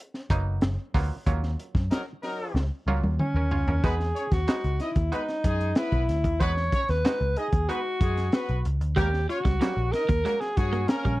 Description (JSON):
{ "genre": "funk", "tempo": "93 BPM", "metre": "4/4", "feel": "straight", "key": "unclear", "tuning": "A4 = 442 Hz", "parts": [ { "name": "crunchy breakbeat drum kit", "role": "drums", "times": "0.1-11.2 s", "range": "hi-hat, kick drum, snare drum, toms", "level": "-27 LUFS", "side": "equal", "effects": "none" }, { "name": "muted clav", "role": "stabs", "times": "0.3-11.1 s", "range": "F#3 to C#5", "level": "-35 LUFS", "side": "right 4 dB", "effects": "overdrive, slapback echo" }, { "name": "vintage muted picked electric bass", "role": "bass", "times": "0.3-11.2 s", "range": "F#1 to G2", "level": "-26 LUFS", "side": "equal", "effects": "none" }, { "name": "warm horn section", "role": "second line", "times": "1.9-11.1 s", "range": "F#3 to D#5", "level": "-34 LUFS", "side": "left 2 dB", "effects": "none" }, { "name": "breathy alto saxophone", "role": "melody", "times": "3.2-11.2 s", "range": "C#4 to C#5", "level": "-28 LUFS", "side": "equal", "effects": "none" }, { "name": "semi-hollow electric guitar", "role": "riff", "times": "9.0-11.2 s", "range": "F#3 to A#3", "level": "-33 LUFS", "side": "right 5 dB", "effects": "none" } ], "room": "small room reverb", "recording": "dry, close 1970s-style studio recording", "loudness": "-23 LUFS", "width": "side -18 dB against mid", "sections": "0.0-3.8 A section; 3.8-11.2 B section", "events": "band accent 1.3-3.8; drum fill 2.5-3.8", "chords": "0.0 G#m7 (rootless); 1.3 D#m7; 3.8 Emaj9 (rootless); 9.0 D#7#9", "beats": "0.62 | 1.26 1.91 2.55 3.19 | 3.83 4.48 5.12 5.76 | 6.40 7.05 7.69 8.33 | 8.97 9.61 10.25 10.89" }